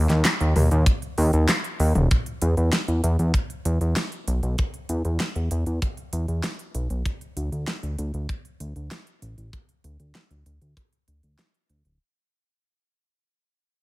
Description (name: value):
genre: synthwave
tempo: 97 BPM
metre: 4/4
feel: straight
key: unclear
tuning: A4 = 441 Hz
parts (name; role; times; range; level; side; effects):
- fat analog bass; bass; 0.0-12.0 s; D1 to E2; -21 LUFS; equal; none
- pop drum kit; drums; 0.1-12.0 s; handclaps, hi-hat, snare drum, toms; -26 LUFS; equal; none
- kick drum; drums; 0.9-10.9 s; none; -23 LUFS; equal; none
room: small room ambience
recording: none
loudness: -22 LUFS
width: side -19 dB against mid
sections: 0.0-2.1 A section; 2.1-12.0 B section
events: fade-out 2.1-12.0; filter sweep on analog synth bass 2.1-12.0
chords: none